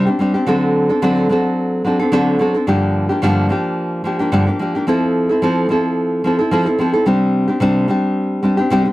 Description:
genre	pop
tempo	109 BPM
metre	4/4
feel	swing 55% on 16ths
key	F major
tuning	A4 = 436 Hz
part	nylon-string guitar	solo	0.0-8.9 s	G2 to A4	-14 LUFS	equal	none
room	little or no reverb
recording	dry, close 1970s-style studio recording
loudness	-14 LUFS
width	side -17 dB against mid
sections	0.0-8.9 A section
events	none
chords	0.5 D7; 2.7 Gm7; 4.9 Fmaj7; 7.1 Csus2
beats	| 0.48 1.03 1.58 2.13 | 2.68 3.23 3.78 4.33 | 4.88 5.42 5.97 6.52 | 7.07 7.61 8.16 8.71

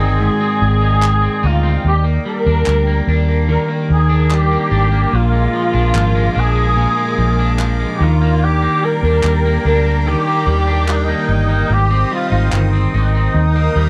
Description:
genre	indie pop, bedroom pop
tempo	73 BPM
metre	4/4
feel	straight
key	Eb major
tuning	A4 = 440 Hz
part	warm cor anglais	melody	0.0-13.9 s	D4 to Bb4	-21 LUFS	equal	ensemble chorus, slapback echo
part	electric guitar at the edge of break-up	accompaniment	0.0-13.9 s	Ab2 to Eb4	-22 LUFS	equal	lush chorus, vibrato effect
part	phased analog pad	sustained chords	0.0-13.9 s	Ab4 to Eb6	-29 LUFS	equal	phaser, chorus
part	vintage muted fingered electric bass	bass	0.0-13.9 s	G1 to Eb2	-17 LUFS	equal	none
part	group handclap	percussion	1.0-12.7 s	none	-28 LUFS	equal	none
room	little or no reverb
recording	dry, close 1970s-style studio recording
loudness	-15 LUFS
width	mono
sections	0.0-13.9 A section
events	none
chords	0.0 Abmaj7; 1.8 Ebmaj7; 5.1 Bb7; 8.0 Ebmaj7; 11.7 Abmaj7; 13.3 Eb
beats	0.20 1.02 | 1.84 2.66 3.48 4.30 | 5.13 5.95 6.77 7.59 | 8.41 9.24 10.06 10.88 | 11.70 12.52 13.35

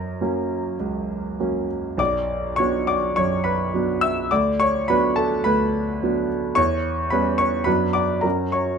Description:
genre	classical, romantic character piece for solo piano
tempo	91-112 BPM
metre	4/4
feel	rubato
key	B minor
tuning	A4 = 437 Hz
part	clear concert grand piano	solo	0.0-8.8 s	B1 to E6	-20 LUFS	equal	none
room	light reverb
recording	close, detailed microphones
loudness	-19 LUFS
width	side -6 dB against mid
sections	0.0-8.8 A section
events	none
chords	0.0 F#; 2.0 Bm; 4.3 Bm/D; 6.6 C#m7b5/E; 7.7 Bm/F#; 8.2 F#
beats	0.20 0.78 1.38 | 1.99 2.58 3.16 3.73 | 4.30 4.88 5.45 6.02 | 6.58 7.12 7.67 8.24

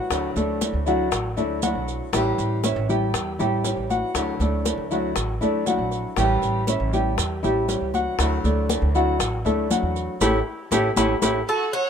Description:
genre	latin, Cuban son and guajira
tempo	119 BPM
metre	4/4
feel	straight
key	D major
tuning	A4 = 435 Hz
part	nylon-string guitar	accompaniment	0.0-11.4 s	D3 to E4	-26 LUFS	left 2 dB	none
part	dark baby grand piano	arpeggios	0.0-11.4 s	F#3 to G5	-25 LUFS	equal	none
part	upright bass	bass	0.1-11.4 s	A1 to E2	-26 LUFS	right 1 dB	none
part	bongos	percussion	0.1-11.3 s	none	-31 LUFS	left 6 dB	none
part	congas	percussion	0.1-11.3 s	none	-30 LUFS	left 2 dB	none
part	maracas	percussion	0.1-11.3 s	none	-31 LUFS	right 8 dB	none
part	Cuban tres	melody	11.5-11.9 s	A4 to F#5	-23 LUFS	right 1 dB	none
part	warm chamber violin section	second line	11.5-11.9 s	F#4 to C#5	-25 LUFS	right 3 dB	none
room	moderate spring reverb, RT60 2.0 s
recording	minimal, uncompressed stereo recording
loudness	-20 LUFS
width	side -7 dB against mid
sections	0.0-11.9 A section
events	band accent 10.2-11.9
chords	0.1 Dadd9; 2.1 A7; 4.2 Dadd9; 6.2 A7; 8.2 Dadd9; 10.2 A7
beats	| 0.11 0.61 1.12 1.63 | 2.13 2.64 3.14 3.65 | 4.15 4.66 5.16 5.67 | 6.17 6.68 7.18 7.69 | 8.20 8.70 9.21 9.71 | 10.21 10.72 11.22 11.73

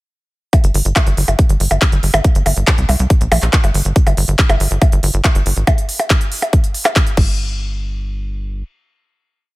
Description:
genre	psychedelic trance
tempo	140 BPM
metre	4/4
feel	straight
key	G phrygian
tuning	A4 = 439 Hz
part	electronic kick drum	drums	0.5-7.3 s	none	-13 LUFS	equal	none
part	techno drum kit	drums	0.5-7.3 s	crash cymbal, handclaps, hi-hat, percussion blips	-18 LUFS	equal	none
part	tight sequencer bass	bass	0.6-8.6 s	G1 to C2	-16 LUFS	equal	none
room	little or no reverb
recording	none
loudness	-12 LUFS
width	side -20 dB against mid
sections	0.5-7.4 groove; 7.4-9.6 final hit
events	none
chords	none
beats	| 0.53 0.96 1.39 1.82 | 2.25 2.67 3.10 3.53 | 3.96 4.39 4.82 5.25 | 5.67 6.10 6.53 6.96 | 7.39 7.82 8.24

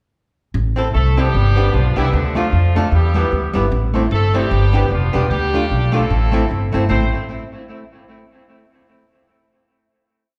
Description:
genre	ska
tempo	151 BPM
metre	4/4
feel	swing 60% on 8ths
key	A minor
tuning	A4 = 440 Hz
part	upright bass	bass	0.5-7.1 s	E1 to F2	-19 LUFS	equal	none
part	archtop guitar, miked and amplified	accompaniment	0.8-7.0 s	G3 to A4	-25 LUFS	equal	tape echo
part	clear upright piano	stabs	0.8-7.1 s	C4 to C5	-28 LUFS	equal	none
part	clear horn section	melody	0.9-7.1 s	D3 to C5	-25 LUFS	equal	none
room	wet large studio reverb, RT60 1.3 s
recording	band playing live in one room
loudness	-17 LUFS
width	mono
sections	0.5-6.9 A section; 6.9-8.5 final chord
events	none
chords	0.5 Am; 1.3 G; 2.1 Dm; 2.9 Em; 3.7 Am; 4.5 G; 5.3 Dm; 6.1 Am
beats	| 0.54 0.94 1.33 1.73 | 2.12 2.52 2.92 3.32 | 3.71 4.11 4.51 4.91 | 5.30 5.70 6.10 6.50 | 6.89

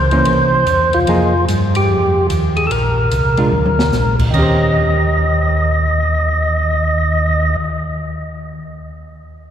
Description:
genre	soul jazz organ trio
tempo	147 BPM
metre	4/4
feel	swing 65% on 8ths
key	Eb mixolydian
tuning	A4 = 441 Hz
part	percussive tonewheel organ	melody	0.0-7.6 s	F4 to Eb5	-17 LUFS	equal	slow rotary speaker, overdrive
part	hollow-body jazz guitar	accompaniment	0.0-7.7 s	Eb3 to C5	-21 LUFS	right 1 dB	none
part	mellow tonewheel organ	bass	0.0-7.6 s	Bb1 to G2	-17 LUFS	equal	chorus vibrato, slow rotary speaker
part	open jazz drum kit	drums	0.1-7.5 s	crash cymbal, cymbal swell, hi-hat, kick drum, ride cymbal, snare drum, toms	-25 LUFS	equal	none
room	wet cathedral reverb, RT60 5.0 s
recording	recorded in a church or concert hall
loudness	-13 LUFS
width	side -9 dB against mid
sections	0.0-4.3 A section; 4.3-7.6 B section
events	drum fill 3.5-3.9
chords	0.0 C7b9; 1.1 Fm11; 2.7 Bb; 4.3 Eb6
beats	0.26 0.67 | 1.08 1.48 1.89 2.30 | 2.71 3.11 3.52 3.93 | 4.34 4.74 5.15 5.56 | 5.97 6.37 6.78 7.19

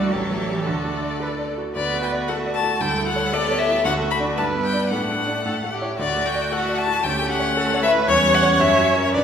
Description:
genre	quick classical-period movement for piano quintet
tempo	113 BPM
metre	2/4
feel	rubato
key	D major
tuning	A4 = 441 Hz
part	rich violin	melody	0.0-9.2 s	B4 to B5	-22 LUFS	left 4 dB	none
part	clear violin	second line	0.0-9.2 s	C#4 to A4	-29 LUFS	left 2 dB	none
part	rich cello	second line	0.0-9.2 s	D3 to B3	-29 LUFS	right 4 dB	none
part	clear concert grand piano	accompaniment	0.0-9.2 s	A1 to D5	-25 LUFS	equal	none
part	rich viola	accompaniment	0.0-9.2 s	F#4 to D5	-25 LUFS	right 3 dB	none
room	wet recital hall reverb, RT60 1.5 s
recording	recorded in a church or concert hall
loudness	-18 LUFS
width	side -8 dB against mid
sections	0.0-1.8 A section; 1.8-9.2 A section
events	none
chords	0.1 A7; 0.7 D; 2.8 A7/D; 3.8 D; 4.4 G; 4.9 D/A; 5.4 A; 6.0 D; 7.0 A7/D; 8.1 C#dim/E; 8.6 F#7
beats	0.12 | 0.66 1.21 | 1.76 2.29 | 2.81 3.33 | 3.85 4.37 | 4.91 5.45 | 5.99 6.52 | 7.05 7.57 | 8.08 8.61 | 9.15

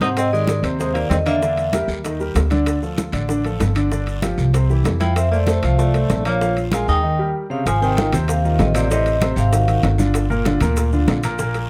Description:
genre	Afro-Cuban jazz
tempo	192 BPM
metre	4/4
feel	straight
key	unclear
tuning	A4 = 440 Hz
part	vibraphone with medium hard mallets	melody	0.0-1.9, 5.0-9.8 s	C5 to Ab5	-25 LUFS	equal	plate reverb
part	warm tenor saxophone	second line	0.0-1.8, 5.0-9.8 s	A2 to F4	-28 LUFS	equal	none
part	clear concert grand piano	accompaniment	0.0-11.6 s	Bb2 to F5	-25 LUFS	equal	none
part	upright bass	bass	0.0-11.7 s	G1 to Ab2	-22 LUFS	equal	none
part	bongos	percussion	0.0-11.7 s	none	-31 LUFS	equal	none
part	congas	percussion	0.0-11.7 s	none	-28 LUFS	equal	none
part	guiro	percussion	0.0-11.7 s	none	-41 LUFS	equal	none
part	maracas	percussion	0.0-11.7 s	none	-40 LUFS	equal	none
part	timbales	percussion	0.0-11.7 s	none	-32 LUFS	equal	none
room	light reverb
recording	close, detailed microphones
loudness	-19 LUFS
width	mono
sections	0.0-7.7 A section; 7.7-11.7 B section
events	break 7.0-7.7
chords	0.2 Abmaj7; 1.4 Em7b5; 2.0 Eb; 2.7 Dm; 3.9 G5; 4.5 C; 5.2 F; 6.4 Bb5; 7.0 Eb; 7.7 Ab6; 8.9 Adim; 9.5 Ab6; 10.1 Gm7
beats	| 0.17 0.49 0.80 1.11 | 1.42 1.73 2.04 2.36 | 2.67 2.98 3.29 3.60 | 3.92 4.23 4.54 4.85 | 5.17 5.48 5.79 6.10 | 6.41 6.73 7.04 7.35 | 7.66 7.97 8.28 8.60 | 8.91 9.22 9.53 9.84 | 10.15 10.46 10.77 11.08 | 11.39

